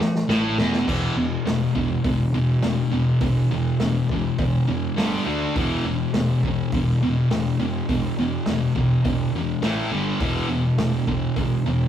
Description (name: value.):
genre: garage rock duo or trio.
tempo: 103 BPM.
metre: 4/4.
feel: straight.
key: unclear.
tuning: A4 = 443 Hz.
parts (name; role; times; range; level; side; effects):
vintage drum kit; drums; 0.0-11.5 s; crash cymbal, hi-hat, kick drum, snare drum; -27 LUFS; equal; none.
thick fuzz guitar; riff; 0.3-11.9 s; E2 to D4; -21 LUFS; equal; distortion.
fuzz fingered electric bass; bass; 0.3-11.8 s; E1 to D2; -30 LUFS; equal; overdrive.
room: light reverb.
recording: rough rehearsal-room recording.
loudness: -20 LUFS.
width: side -10 dB against mid.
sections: 0.9-11.9 A section.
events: drum fill 0.0-0.9.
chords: 0.0 N.C.; 0.9 E5; 5.0 G5; 5.3 D5; 5.6 E5; 9.6 A5; 9.9 G5; 10.2 E5.